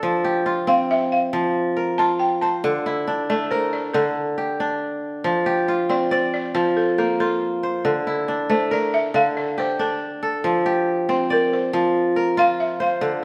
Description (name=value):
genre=west african traditional, West African string and xylophone music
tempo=92 BPM (dotted quarters)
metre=12/8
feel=straight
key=F major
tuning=A4 = 440 Hz
part: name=kora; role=arpeggios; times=0.0-13.2 s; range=D3 to D5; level=-23 LUFS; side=equal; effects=none
part: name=balafon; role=melody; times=0.7-13.0 s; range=A4 to A5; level=-25 LUFS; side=equal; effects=none
room=wet stone room reverb, RT60 1.3 s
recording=band playing live in one room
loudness=-21 LUFS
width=mono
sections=0.0-13.2 A section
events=none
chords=0.0 F; 2.6 D5; 5.2 F; 7.9 D5; 10.4 F